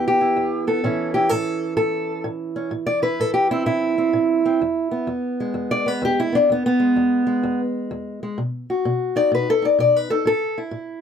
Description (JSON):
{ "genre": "acoustic country blues, solo or duo", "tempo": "127 BPM", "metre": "4/4", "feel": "swing 65% on 8ths", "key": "unclear", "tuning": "A4 = 440 Hz", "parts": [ { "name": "fingerpicked steel-string acoustic guitar", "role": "solo", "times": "0.0-11.0 s", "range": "E2 to D5", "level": "-18 LUFS", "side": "equal", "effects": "none" } ], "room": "light reverb", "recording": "close, detailed microphones", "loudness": "-18 LUFS", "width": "side -7 dB against mid", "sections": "0.0-11.0 A section", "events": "steel-string acoustic guitar solo 0.0-11.0", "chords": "0.0 E5; 0.8 A; 2.7 Am; 4.6 E; 8.4 B; 10.3 A5", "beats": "0.36 | 0.84 1.31 1.78 2.25 | 2.72 3.19 3.67 4.14 | 4.61 5.08 5.55 6.02 | 6.49 6.96 7.44 7.91 | 8.38 8.85 9.32 9.79 | 10.26 10.73" }